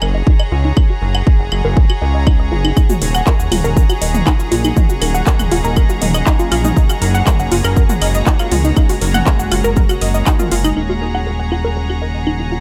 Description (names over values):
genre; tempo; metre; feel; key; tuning
melodic techno; 120 BPM; 4/4; straight; Eb minor; A4 = 440 Hz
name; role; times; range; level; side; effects
tight sequenced synth; arpeggios; 0.0-12.6 s; Eb4 to Gb5; -23 LUFS; equal; chorus, sidechain pumping, digital delay
fat analog bass; bass; 0.0-12.6 s; Eb1 to Db2; -20 LUFS; equal; tube saturation, sidechain pumping
techno drum kit; drums; 0.0-12.4 s; claves, handclaps, hi-hat, shaker, toms; -23 LUFS; equal; low-pass filter on perc, studio ambience, low-pass filter on toms, low-pass filter on hats, low-pass filter on snare
clear studio string section; texture; 0.0-12.6 s; Ab4 to Bb5; -27 LUFS; equal; sidechain pumping
electronic kick drum; drums; 0.3-10.4 s; none; -15 LUFS; equal; studio ambience
evolving wavetable pad; sustained chords; 3.9-12.6 s; Db3 to Gb4; -28 LUFS; equal; chorus, built-in reverb, sidechain pumping
room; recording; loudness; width
light reverb; none; -15 LUFS; mono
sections
0.0-10.8 A section; 10.8-12.6 B section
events
filter sweep on synth arpeggio sound 0.0-10.8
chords
0.0 Gbadd9; 2.8 Ebm7; 6.8 Gbadd9; 10.8 Ebm7